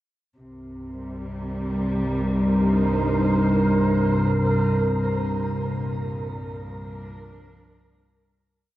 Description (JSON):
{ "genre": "dark ambient drone", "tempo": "free time", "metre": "none", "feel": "none", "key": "C minor", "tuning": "A4 = 440 Hz", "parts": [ { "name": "muted studio cello section", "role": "sustained chords", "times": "0.4-8.8 s", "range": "C2 to C5", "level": "-29 LUFS", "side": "equal", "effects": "shimmer reverb" }, { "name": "analog drone", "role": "drone", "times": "1.1-8.8 s", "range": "C2 to G2", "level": "-23 LUFS", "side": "equal", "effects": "chorus" }, { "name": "wind-like tuned noise texture", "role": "texture", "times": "1.6-8.8 s", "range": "Bb4", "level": "-29 LUFS", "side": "right 4 dB", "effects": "built-in reverb, shimmer reverb" } ], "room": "wet huge ambient reverb, RT60 8.0 s", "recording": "worn, warbling old tape, cassette tape, warbly pitch drift", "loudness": "-20 LUFS", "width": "side -15 dB against mid", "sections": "0.4-8.8 A section", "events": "fade-out on cello section 0.4-8.8; fade-out 4.6-8.8", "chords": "0.4 Cm; 4.6 Bb/C" }